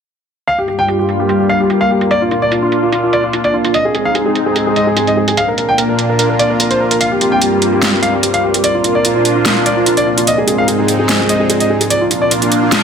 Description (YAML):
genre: heavy wobble dubstep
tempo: 147 BPM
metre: 4/4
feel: half-time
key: unclear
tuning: A4 = 440 Hz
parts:
  - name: warm grand piano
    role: melody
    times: 0.5-12.8 s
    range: F4 to G5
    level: -15 LUFS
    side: equal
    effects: dub echo
  - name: supersaw pad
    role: sustained chords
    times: 0.5-12.8 s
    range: G2 to F4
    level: -15 LUFS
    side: equal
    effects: phaser, low-pass filter
  - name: dubstep drum kit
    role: drums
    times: 0.5-12.8 s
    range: hi-hat, snare drum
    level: -16 LUFS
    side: right 1 dB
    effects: low-pass filter on hats, studio reverb, low-pass filter on snare
  - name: deep dark ambient pad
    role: texture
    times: 2.4-12.8 s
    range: Ab2 to D5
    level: -21 LUFS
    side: right 1 dB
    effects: chorus, built-in reverb
  - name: reverse cymbal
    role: sound effects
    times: 12.8 s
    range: none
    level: -20 LUFS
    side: left 3 dB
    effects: none
room: moderate lush hall reverb, RT60 1.7 s, digital ambience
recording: none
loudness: -11 LUFS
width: side -7 dB against mid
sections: 0.5-12.8 A section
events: fade-in on ambient pad 0.5-12.8; filter sweep on supersaw synth 0.5-12.8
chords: 0.5 Gm7; 2.1 Bb; 3.7 Ab; 5.4 Bb; 7.0 Gm7; 8.6 Bb; 10.3 Ab; 11.9 Bb